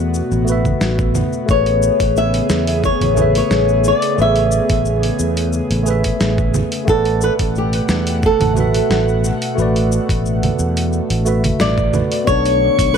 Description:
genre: sunset chillout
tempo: 89 BPM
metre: 4/4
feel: straight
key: A major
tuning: A4 = 442 Hz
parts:
  - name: tine electric piano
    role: accompaniment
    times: 0.0-13.0 s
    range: A3 to F#5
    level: -21 LUFS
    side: right 1 dB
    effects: auto-pan, analog delay
  - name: airy breathy pad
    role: sustained chords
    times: 0.0-13.0 s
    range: B2 to F#5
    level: -24 LUFS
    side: equal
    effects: chorus
  - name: sustaining fretless electric bass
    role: bass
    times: 0.0-13.0 s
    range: A1 to E2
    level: -18 LUFS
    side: equal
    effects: none
  - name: dusty soul sampler-style drum kit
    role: drums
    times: 0.1-13.0 s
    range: cabasa, congas, hi-hat, snare drum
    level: -23 LUFS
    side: right 2 dB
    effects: overdrive
  - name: electronic kick drum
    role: drums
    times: 0.7-12.9 s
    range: none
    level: -20 LUFS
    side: equal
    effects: overdrive
  - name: flamenco guitar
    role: melody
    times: 1.5-13.0 s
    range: G4 to E5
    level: -17 LUFS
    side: left 1 dB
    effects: analog delay
  - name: drifting glass-harmonics texture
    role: texture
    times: 12.4-13.0 s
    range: C#6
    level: -26 LUFS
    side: right 9 dB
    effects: chorus, built-in reverb
room: moderate spring reverb, RT60 2.6 s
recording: echo-heavy mix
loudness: -14 LUFS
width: side -7 dB against mid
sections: 0.0-12.3 A section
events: band accent 11.6-11.9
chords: 0.0 D69/A; 1.5 Amaj9; 6.9 Gmaj9/A (rootless); 12.3 Bm9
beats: 0.14 0.82 | 1.49 2.17 2.84 3.51 | 4.19 4.86 5.54 6.21 | 6.88 7.56 8.23 8.91 | 9.58 10.26 10.93 11.60 | 12.28 12.95

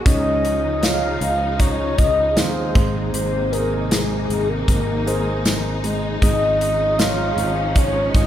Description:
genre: pop ballad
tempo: 78 BPM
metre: 4/4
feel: straight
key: Db major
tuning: A4 = 440 Hz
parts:
  - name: warm concert grand piano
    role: accompaniment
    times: 0.0-8.3 s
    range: Ab3 to F5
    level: -27 LUFS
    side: right 1 dB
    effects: none
  - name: warm studio string section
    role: sustained chords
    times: 0.0-8.3 s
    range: C3 to Eb4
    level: -26 LUFS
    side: equal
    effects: none
  - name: soft octave-layered synth lead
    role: melody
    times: 0.1-8.3 s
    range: Ab4 to F5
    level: -22 LUFS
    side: left 1 dB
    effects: chorus, phaser
  - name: sustaining fretless electric bass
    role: bass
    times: 0.1-8.3 s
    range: Ab1 to Eb2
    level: -25 LUFS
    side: right 1 dB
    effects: none
  - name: modern studio drum kit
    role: drums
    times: 0.1-8.3 s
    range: hi-hat, kick drum, snare drum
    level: -19 LUFS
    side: equal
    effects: none
  - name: tambourine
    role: percussion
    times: 0.8-7.2 s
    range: none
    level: -34 LUFS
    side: right 5 dB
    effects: none
room: moderate concert hall reverb, RT60 2.1 s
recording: recorded in a church or concert hall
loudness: -17 LUFS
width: side -11 dB against mid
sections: 0.0-8.3 A section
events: none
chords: 0.1 Dbadd9; 2.8 Abadd9; 6.2 Dbadd9/Ab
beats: | 0.06 0.83 1.60 2.37 | 3.14 3.91 4.68 5.45 | 6.22 6.99 7.76

